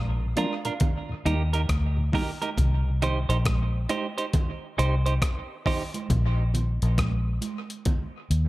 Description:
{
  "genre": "dub reggae",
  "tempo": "68 BPM",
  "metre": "4/4",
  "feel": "swing 63% on 16ths",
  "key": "C minor",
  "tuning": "A4 = 440 Hz",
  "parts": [
    { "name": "vintage muted fingered electric bass", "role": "bass", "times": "0.0-8.5 s", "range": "Bb1 to Eb2", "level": "-23 LUFS", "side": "equal", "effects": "none" },
    { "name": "mellow tonewheel organ", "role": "accompaniment", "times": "0.2-2.9 s", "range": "Eb2 to Eb4", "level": "-33 LUFS", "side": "left 1 dB", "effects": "stopped rotary speaker" },
    { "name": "clean electric guitar", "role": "accompaniment", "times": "0.4-5.8 s", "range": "D4 to C5", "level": "-31 LUFS", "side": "right 4 dB", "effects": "dub echo" },
    { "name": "breakbeat sampler-style drum kit", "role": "drums", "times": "0.4-8.5 s", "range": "hi-hat, kick drum, rim click", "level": "-28 LUFS", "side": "equal", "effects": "none" },
    { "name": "congas", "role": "percussion", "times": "0.4-8.1 s", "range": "none", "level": "-35 LUFS", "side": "right 4 dB", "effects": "dub echo" }
  ],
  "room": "little or no reverb",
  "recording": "none",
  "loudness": "-23 LUFS",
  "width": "side -18 dB against mid",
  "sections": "0.0-8.5 A section",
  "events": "none",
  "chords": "0.0 Bb; 0.8 Eb; 2.6 Cm; 6.1 N.C."
}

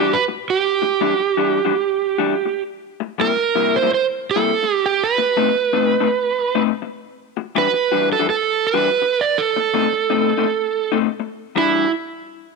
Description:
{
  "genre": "blues",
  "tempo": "110 BPM",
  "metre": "4/4",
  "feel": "swing 68% on 8ths",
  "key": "E minor",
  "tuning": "A4 = 440 Hz",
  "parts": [
    { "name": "overdriven slide guitar", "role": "melody", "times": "0.0-11.9 s", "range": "E4 to D5", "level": "-18 LUFS", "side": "right 8 dB", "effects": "none" },
    { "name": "electric guitar through a small old amp", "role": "riff", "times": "0.0-11.9 s", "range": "B2 to F#4", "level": "-21 LUFS", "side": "left 18 dB", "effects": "none" }
  ],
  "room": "moderate echo chamber reverb, RT60 1.8 s",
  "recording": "1960s-style stereo with parts hard left and right",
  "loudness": "-16 LUFS",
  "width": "side -3 dB against mid",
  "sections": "0.0-11.6 A section",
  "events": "none",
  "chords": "0.0 Em9; 2.8 C7; 5.0 B7b9; 7.2 Em9; 9.4 B7b9; 11.6 Em9"
}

